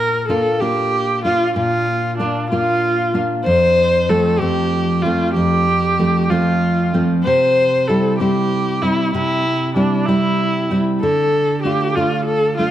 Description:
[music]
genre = andean folk, Andean ensemble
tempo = 64 BPM (dotted quarters)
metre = 6/8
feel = straight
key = unclear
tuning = A4 = 438 Hz
[part]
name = warm viola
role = melody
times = 0.0-12.7 s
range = D4 to C5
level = -17 LUFS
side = equal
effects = none
[part]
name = nylon-string guitar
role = accompaniment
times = 0.0-12.7 s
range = F2 to F4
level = -18 LUFS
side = equal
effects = none
[sound]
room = moderate scoring stage reverb, RT60 1.9 s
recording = close, detailed microphones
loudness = -15 LUFS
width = side -12 dB against mid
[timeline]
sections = 0.0-12.7 A section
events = none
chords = 0.0 Bb; 3.5 F; 7.3 C; 11.0 Dm

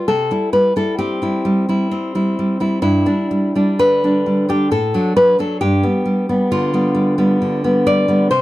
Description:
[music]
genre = romantic piece for solo classical guitar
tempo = 66 BPM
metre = 3/4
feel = rubato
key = unclear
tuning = A4 = 439 Hz
[part]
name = nylon-string guitar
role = solo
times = 0.0-8.4 s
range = G2 to D5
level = -14 LUFS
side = equal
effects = none
[sound]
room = light reverb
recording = dry, close 1970s-style studio recording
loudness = -14 LUFS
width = side -16 dB against mid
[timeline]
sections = 0.0-8.4 A section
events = none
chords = 0.1 C; 2.8 G5; 4.7 D/A; 5.6 G

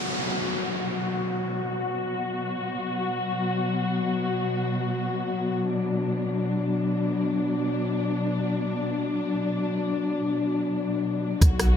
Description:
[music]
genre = half-time drum and bass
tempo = free time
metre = none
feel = none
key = B minor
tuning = A4 = 441 Hz
[part]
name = muted studio string section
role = sustained chords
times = 0.0-11.8 s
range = B2 to F#4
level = -25 LUFS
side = left 2 dB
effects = sidechain pumping, low-pass filter
[part]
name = downlifter and sub drop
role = sound effects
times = 0.0-2.8, 11.6-11.8 s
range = none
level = -30 LUFS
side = equal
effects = none
[part]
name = long sustained 808-style bass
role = bass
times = 11.4-11.8 s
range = B1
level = -21 LUFS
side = equal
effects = none
[part]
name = drum and bass drum kit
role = drums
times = 11.4-11.7 s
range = hi-hat, rim click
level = -31 LUFS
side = right 1 dB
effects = overdrive, low-pass filter on snare, low-pass filter on hats
[part]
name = electronic kick drum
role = drums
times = 11.4-11.5 s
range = none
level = -18 LUFS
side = equal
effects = overdrive
[sound]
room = wet lush hall reverb, RT60 1.9 s, digital ambience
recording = none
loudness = -24 LUFS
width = side -8 dB against mid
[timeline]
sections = 0.0-11.4 A section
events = impact 11.4-11.8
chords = 0.0 B5

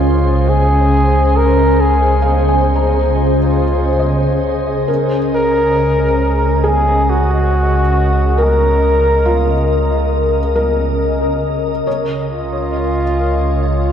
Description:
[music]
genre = ambient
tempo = 68 BPM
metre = 4/4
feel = straight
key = unclear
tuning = A4 = 441 Hz
[part]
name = mellow flugelhorn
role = melody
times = 0.0-13.9 s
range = F4 to Bb4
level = -17 LUFS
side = equal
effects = analog delay
[part]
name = glassy FM pad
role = sustained chords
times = 0.0-13.9 s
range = Db3 to Eb5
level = -16 LUFS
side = left 1 dB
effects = ensemble chorus, built-in reverb
[part]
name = felt-muted upright piano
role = arpeggios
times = 0.0-13.9 s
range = F4 to Bb5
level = -24 LUFS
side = equal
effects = analog delay
[part]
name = warm sub bass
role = bass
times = 0.0-13.9 s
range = Db2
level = -16 LUFS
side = equal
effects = tube saturation
[sound]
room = wet spring reverb, RT60 2.6 s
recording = echo-heavy mix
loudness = -12 LUFS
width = side -8 dB against mid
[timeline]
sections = 0.0-13.9 A section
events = fade-in on felt piano 0.0-13.9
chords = 0.0 Fm7/Db; 11.9 Db

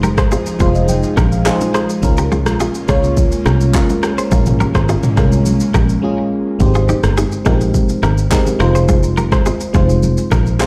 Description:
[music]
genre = afrobeats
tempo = 105 BPM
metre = 4/4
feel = straight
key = Ab major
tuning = A4 = 438 Hz
[part]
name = FM electric piano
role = accompaniment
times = 0.0-10.7 s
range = Ab3 to Ab5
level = -21 LUFS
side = equal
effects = chorus, phaser, plate reverb
[part]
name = airy breathy pad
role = sustained chords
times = 0.0-6.6 s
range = F3 to Ab4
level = -26 LUFS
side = equal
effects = chorus
[part]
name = semi-hollow electric guitar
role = riff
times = 0.0-10.7 s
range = Eb4 to C5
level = -25 LUFS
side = equal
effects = delay
[part]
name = fingered electric bass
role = bass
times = 0.0-10.6 s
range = F1 to Db2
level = -18 LUFS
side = equal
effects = none
[part]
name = deep house drum kit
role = drums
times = 0.0-10.7 s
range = handclaps, kick drum, rim click, shaker, toms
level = -19 LUFS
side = equal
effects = none
[part]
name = congas and bongos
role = percussion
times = 0.0-10.7 s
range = none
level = -25 LUFS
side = equal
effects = none
[sound]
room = light reverb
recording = played on a big sound system in a bare room, large studio reverb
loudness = -14 LUFS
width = mono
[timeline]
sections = 0.0-6.6 A section; 6.6-10.7 A section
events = FM electric piano fill 0.3-2.0; break 6.0-6.6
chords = 0.0 Fm7; 2.0 Db6; 4.3 Bbm7; 6.6 Abmaj7; 8.6 Fm7

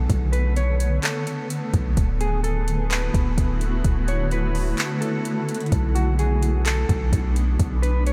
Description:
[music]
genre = hip hop, atmospheric cloud-rap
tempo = 128 BPM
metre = 4/4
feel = half-time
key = B dorian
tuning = A4 = 442 Hz
[part]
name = granular cloud pad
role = sustained chords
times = 0.0-8.1 s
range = D3 to F#4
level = -30 LUFS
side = equal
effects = built-in reverb, sidechain pumping
[part]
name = long sustained 808-style bass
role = bass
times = 0.0-8.1 s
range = D1 to B1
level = -24 LUFS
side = equal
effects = none
[part]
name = smooth R&B drum kit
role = drums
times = 0.1-8.1 s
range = handclaps, hi-hat, kick drum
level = -28 LUFS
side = equal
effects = none
[part]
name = mellow electric guitar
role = melody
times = 0.3-8.1 s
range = F#4 to C#5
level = -33 LUFS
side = equal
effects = subtle chorus, analog delay
[sound]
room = moderate huge ambient reverb, RT60 8.2 s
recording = dreamy mix soaked in reverb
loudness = -22 LUFS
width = mono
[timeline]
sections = 0.0-5.7 A section; 5.7-8.1 B section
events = kick muted 4.8-5.7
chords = 0.0 Bm9; 2.0 D6; 5.7 Bm7

